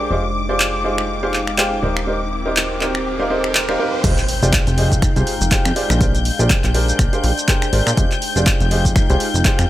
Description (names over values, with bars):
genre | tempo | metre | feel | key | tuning
piano house | 122 BPM | 4/4 | swing 57% on 16ths | F dorian | A4 = 441 Hz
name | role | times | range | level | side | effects
rich symphonic string section | sustained chords | 0.0-9.7 s | D6 to G6 | -26 LUFS | left 4 dB | sidechain pumping
clear upright piano | riff | 0.0-9.6 s | Eb4 to G5 | -22 LUFS | right 1 dB | sidechain pumping, tape echo
plucky analog bass | bass | 0.0-9.7 s | Eb1 to Bb2 | -20 LUFS | equal | tube saturation, sidechain pumping
warbly tape-like pad | texture | 0.0-9.7 s | Ab3 to G5 | -26 LUFS | equal | chorus, built-in reverb, sidechain pumping
riser and impact | sound effects | 1.2-6.0 s | none | -28 LUFS | right 1 dB | none
punchy analog drum machine | drums | 0.6-9.7 s | crash cymbal, finger snaps, handclaps, hi-hat, shaker | -21 LUFS | equal | none
electronic kick drum | drums | 4.0-9.6 s | none | -17 LUFS | equal | none
room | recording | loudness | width
light reverb | none | -15 LUFS | side -14 dB against mid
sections
0.0-4.0 A section; 4.0-9.7 B section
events
riser 1.2-4.0; drop 4.0-9.7; impact 4.0-6.0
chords
0.1 Fm9; 1.8 Eb6; 4.0 Fm9; 6.0 Bb13; 8.0 Fm9